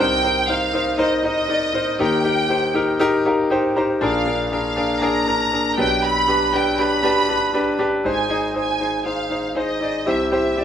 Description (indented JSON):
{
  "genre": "pop",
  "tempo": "119 BPM",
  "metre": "4/4",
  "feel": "straight",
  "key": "C minor",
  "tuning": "A4 = 441 Hz",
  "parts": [
    { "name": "warm symphonic violin section", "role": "melody", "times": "0.0-10.6 s", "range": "Eb5 to B5", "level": "-21 LUFS", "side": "right 2 dB", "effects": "none" },
    { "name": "clear concert grand piano", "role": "accompaniment", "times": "0.0-10.6 s", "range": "Ab1 to Bb5", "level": "-19 LUFS", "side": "left 1 dB", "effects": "none" }
  ],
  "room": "moderate studio reverb, RT60 0.9 s",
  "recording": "band playing live in one room",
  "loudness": "-17 LUFS",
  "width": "side -9 dB against mid",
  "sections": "0.0-8.1 A section; 8.1-10.6 B section",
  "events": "grand piano fill 3.0-4.0",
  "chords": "0.0 Cm7; 2.0 Eb; 4.0 Bb7; 5.8 G/B; 8.1 Ab; 10.1 C"
}